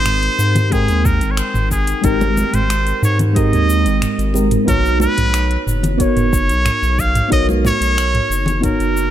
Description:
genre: sunset chillout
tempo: 91 BPM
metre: 4/4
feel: straight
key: unclear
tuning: A4 = 436 Hz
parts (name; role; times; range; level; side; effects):
- trumpet with straight mute; melody; 0.0-9.1 s; Ab4 to F5; -20 LUFS; equal; tape echo
- mellow FM electric piano; accompaniment; 0.0-9.1 s; Ab3 to G5; -20 LUFS; moving between left 3 dB and right 7 dB; chorus, phaser, auto-pan
- round analog bass; bass; 0.0-9.1 s; F#1 to Ab2; -18 LUFS; equal; none
- smooth R&B drum kit; drums; 0.1-9.1 s; cabasa, finger snaps, hi-hat, toms; -23 LUFS; right 1 dB; none
- congas; percussion; 0.6-8.6 s; none; -24 LUFS; left 3 dB; none
- electronic kick drum; drums; 0.7-8.8 s; none; -20 LUFS; equal; none
room: light reverb, digital ambience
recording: none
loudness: -13 LUFS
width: side -11 dB against mid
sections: 0.0-9.1 A section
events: none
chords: 0.0 Abmaj9; 4.7 Bmaj9

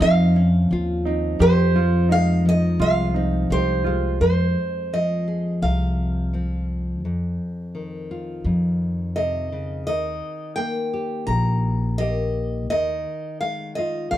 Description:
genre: acoustic folk duo or small band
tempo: 85 BPM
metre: 4/4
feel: straight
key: F minor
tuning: A4 = 440 Hz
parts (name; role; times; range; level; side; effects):
- picked old ladder-braced acoustic guitar; melody; 0.0-14.2 s; C5 to Bb5; -24 LUFS; right 1 dB; none
- nylon-string guitar; accompaniment; 0.0-14.2 s; F2 to Ab4; -25 LUFS; left 2 dB; none
- warm upright piano; arpeggios; 0.0-4.2 s; Eb4 to G4; -28 LUFS; right 6 dB; slapback echo
- upright bass; bass; 0.0-14.2 s; Bb1 to F2; -22 LUFS; equal; none
room: moderate large studio reverb, RT60 0.9 s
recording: dark, warm production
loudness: -19 LUFS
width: side -12 dB against mid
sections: 0.0-4.2 A section; 4.2-14.2 B section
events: none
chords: 0.0 Dbmaj9; 1.4 Fmadd9; 4.2 Fm; 7.0 Dbmaj9/F; 9.9 Eb; 12.7 Ab5/Eb

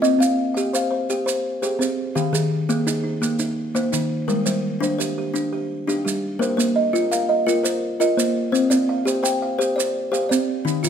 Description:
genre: southern african traditional, mbira-style interlocking cycle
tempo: 113 BPM (dotted quarters)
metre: 12/8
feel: straight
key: unclear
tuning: A4 = 440 Hz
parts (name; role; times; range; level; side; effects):
- buzzing kalimba; arpeggios; 0.0-10.9 s; Eb3 to F5; -23 LUFS; right 3 dB; none
- kalimba; arpeggios; 0.0-10.9 s; Eb3 to G5; -22 LUFS; left 3 dB; none
- maracas; percussion; 0.0-10.9 s; none; -29 LUFS; right 8 dB; none
room: light reverb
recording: none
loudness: -19 LUFS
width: side -8 dB against mid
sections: 0.0-6.4 A section; 6.4-10.9 B section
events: none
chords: 0.0 Cm; 2.2 Eb; 4.3 Gm; 6.4 Bb5; 8.5 C5

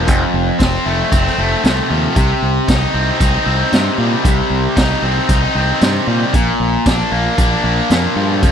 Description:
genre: classic rock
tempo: 115 BPM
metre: 4/4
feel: straight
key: C dorian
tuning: A4 = 440 Hz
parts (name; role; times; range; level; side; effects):
- distorted electric guitar; riff; 0.0-8.5 s; F2 to Eb4; -15 LUFS; left 1 dB; overdrive
- growling fingered electric bass; bass; 0.0-8.5 s; F1 to Bb2; -18 LUFS; equal; overdrive
- raw garage drum kit; drums; 0.1-8.5 s; hi-hat, kick drum, snare drum; -15 LUFS; equal; none
room: little or no reverb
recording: dry, close 1970s-style studio recording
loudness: -12 LUFS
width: side -8 dB against mid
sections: 0.0-8.5 A section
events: none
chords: 0.1 F; 2.2 Cm; 6.3 Bb

